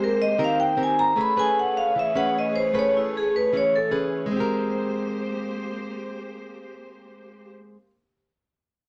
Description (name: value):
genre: bossa nova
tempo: 153 BPM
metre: 4/4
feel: straight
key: Ab major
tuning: A4 = 440 Hz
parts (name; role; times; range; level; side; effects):
- vibraphone with medium hard mallets; melody; 0.0-3.9 s; E4 to B5; -24 LUFS; equal; none
- nylon-string guitar; accompaniment; 0.0-7.9 s; Eb3 to B4; -30 LUFS; equal; none
- warm studio string section; sustained chords; 0.0-7.5 s; A3 to C#5; -38 LUFS; equal; none
room: light reverb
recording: none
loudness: -23 LUFS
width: mono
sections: 0.0-4.3 A section; 4.3-7.5 B section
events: vibraphone solo 0.0-4.3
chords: 0.0 Abmaj9; 1.2 Amaj9; 4.3 Abmaj9